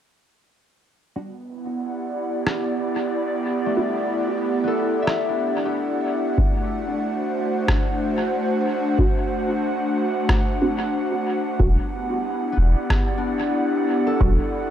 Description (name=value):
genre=ambient dub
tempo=92 BPM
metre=4/4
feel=swing 59% on 16ths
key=E minor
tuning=A4 = 440 Hz
part: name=airy breathy pad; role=sustained chords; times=1.2-14.7 s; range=A3 to F#5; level=-23 LUFS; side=right 1 dB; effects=chorus
part: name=filtered dub chord stab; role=stabs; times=1.2-14.4 s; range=G3 to F#4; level=-28 LUFS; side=right 2 dB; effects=phaser, lush chorus, dub echo
part: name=electronic rim click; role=drums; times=2.5-13.1 s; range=none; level=-28 LUFS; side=equal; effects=dub echo
part: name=concert harp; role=arpeggios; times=3.7-8.2, 12.5-14.7 s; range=A3 to E5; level=-28 LUFS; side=left 5 dB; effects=low-pass filter, dub echo
part: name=electronic kick drum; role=drums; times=6.4-14.4 s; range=none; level=-22 LUFS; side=equal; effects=none
part: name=soft dub sub bass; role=bass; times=11.6-14.4 s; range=E1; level=-18 LUFS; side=equal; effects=none
room=moderate echo chamber reverb, RT60 1.9 s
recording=dark, warm production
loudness=-20 LUFS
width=side -10 dB against mid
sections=1.2-11.6 A section; 11.6-14.7 B section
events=filter sweep on synth stab 1.2-11.6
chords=1.2 Em9; 6.4 D7; 11.6 Em9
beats=| 1.16 1.81 2.47 3.12 | 3.77 4.42 5.07 5.73 | 6.38 7.03 7.68 8.34 | 8.99 9.64 10.29 10.94 | 11.60 12.25 12.90 13.55 | 14.21